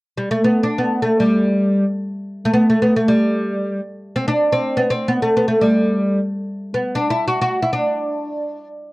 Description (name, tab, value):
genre	arabic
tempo	free time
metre	none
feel	none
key	G maqam ajam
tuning	A4 = 444 Hz
part	oud	melody	0.2-8.7 s	G3 to F#4	-16 LUFS	equal	none
room	moderate booth ambience, RT60 0.1 s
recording	dry, close 1970s-style studio recording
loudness	-16 LUFS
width	side -21 dB against mid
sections	0.0-8.9 A section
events	none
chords	none